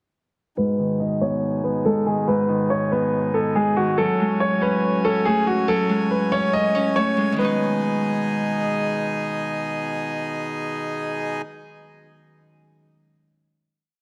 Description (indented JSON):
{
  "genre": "hip hop, drill",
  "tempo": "141 BPM",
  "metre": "4/4",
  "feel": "half-time",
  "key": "G# phrygian",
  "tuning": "A4 = 440 Hz",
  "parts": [
    { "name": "warm concert grand piano", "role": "melody", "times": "0.6-8.6 s", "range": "F#4 to D#5", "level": "-25 LUFS", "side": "equal", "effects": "low-pass filter, delay" },
    { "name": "Celtic harp", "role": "accompaniment", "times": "0.6-11.5 s", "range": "G#2 to D#4", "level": "-26 LUFS", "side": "equal", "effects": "low-pass filter" },
    { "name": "accordion", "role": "sustained chords", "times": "0.6-11.4 s", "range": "A2 to G#5", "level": "-30 LUFS", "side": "equal", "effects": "low-pass filter" }
  ],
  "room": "light reverb",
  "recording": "none",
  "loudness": "-22 LUFS",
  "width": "mono",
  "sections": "0.6-7.4 breakdown; 7.4-10.8 final chord",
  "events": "filter sweep 0.6-7.4",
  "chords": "0.6 G#m; 4.0 F#madd9; 7.4 G#m",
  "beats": "| 0.58 1.00 1.43 1.85 | 2.28 2.70 3.13 3.55 | 3.98 4.41 4.83 5.26 | 5.68 6.11 6.53 6.96 | 7.38 7.81 8.23 8.66 | 9.09 9.51 9.94 10.36"
}